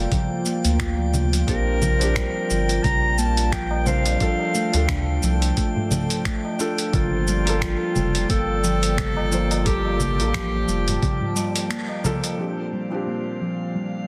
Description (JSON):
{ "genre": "organic downtempo", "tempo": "88 BPM", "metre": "4/4", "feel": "swing 56% on 16ths", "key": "G minor", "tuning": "A4 = 440 Hz", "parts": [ { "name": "felt-muted upright piano", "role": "accompaniment", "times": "0.0-14.1 s", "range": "Bb2 to C5", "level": "-34 LUFS", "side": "equal", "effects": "sidechain pumping, digital delay, shimmer reverb" }, { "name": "warbly tape-like pad", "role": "sustained chords", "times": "0.0-14.1 s", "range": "Bb3 to A5", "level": "-35 LUFS", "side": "equal", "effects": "chorus, built-in reverb, sidechain pumping, shimmer reverb" }, { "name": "round analog bass", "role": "bass", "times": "0.0-11.0 s", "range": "F1 to D2", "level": "-26 LUFS", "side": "equal", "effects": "sidechain pumping" }, { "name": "drifting glass-harmonics texture", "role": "texture", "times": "0.0-14.1 s", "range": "F5 to G5", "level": "-39 LUFS", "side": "equal", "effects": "chorus, built-in reverb, shimmer reverb" }, { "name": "handpan", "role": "arpeggios", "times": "0.1-13.9 s", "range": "F3 to F4", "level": "-30 LUFS", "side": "equal", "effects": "low-pass filter, digital delay, shimmer reverb" }, { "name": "dusty soul sampler-style drum kit", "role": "drums", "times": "0.1-12.4 s", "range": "cabasa, congas, finger snaps, hi-hat", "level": "-29 LUFS", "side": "equal", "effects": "soft clipping on snare" }, { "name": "electronic kick drum", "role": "drums", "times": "0.1-11.2 s", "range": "none", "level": "-28 LUFS", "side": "equal", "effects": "none" }, { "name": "clear clarinet", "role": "melody", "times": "1.5-11.7 s", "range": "F4 to Bb5", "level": "-29 LUFS", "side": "equal", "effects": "digital delay, shimmer reverb" }, { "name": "tabla", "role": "percussion", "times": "3.7-12.4 s", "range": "none", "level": "-35 LUFS", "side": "equal", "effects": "none" } ], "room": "light reverb, studio ambience", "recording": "dense, heavily limited modern master", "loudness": "-22 LUFS", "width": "mono", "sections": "0.0-12.4 A section; 12.4-14.1 B section", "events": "break 11.7-12.4; band accent 11.7-12.0", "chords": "0.0 Gm7; 1.5 Bb6; 4.2 Dm; 6.9 Gm7; 12.4 Bb6" }